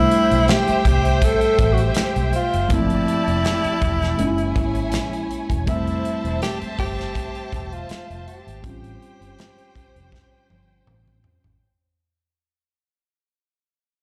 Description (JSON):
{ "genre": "lush 1970s-style soul", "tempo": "81 BPM", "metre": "4/4", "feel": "swing 54% on 16ths", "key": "unclear", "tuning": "A4 = 441 Hz", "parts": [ { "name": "warm tenor saxophone", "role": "melody", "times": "0.0-10.8 s", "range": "E4 to A4", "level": "-25 LUFS", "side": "equal", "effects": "slapback echo" }, { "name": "warm studio string section", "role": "second line", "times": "0.0-11.6 s", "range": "C#4 to A5", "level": "-31 LUFS", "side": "equal", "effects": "slapback echo" }, { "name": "tine electric piano", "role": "accompaniment", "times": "0.0-11.6 s", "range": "F3 to E5", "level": "-28 LUFS", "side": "equal", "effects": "none" }, { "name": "vintage muted fingered electric bass", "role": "bass", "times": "0.0-11.6 s", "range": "E1 to C2", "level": "-26 LUFS", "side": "equal", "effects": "none" }, { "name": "modern studio drum kit", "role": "drums", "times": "0.1-11.6 s", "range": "hi-hat, kick drum, snare drum, toms", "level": "-26 LUFS", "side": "equal", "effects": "none" } ], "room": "little or no reverb", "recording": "live gig heard through the venue's PA, club reverb", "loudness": "-20 LUFS", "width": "mono", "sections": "0.0-11.6 A section", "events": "fade-out 0.0-11.6; drum fill 10.1-11.6", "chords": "0.0 C6; 2.7 Gm11; 4.2 F#9; 5.7 Fmaj9; 8.6 A7alt" }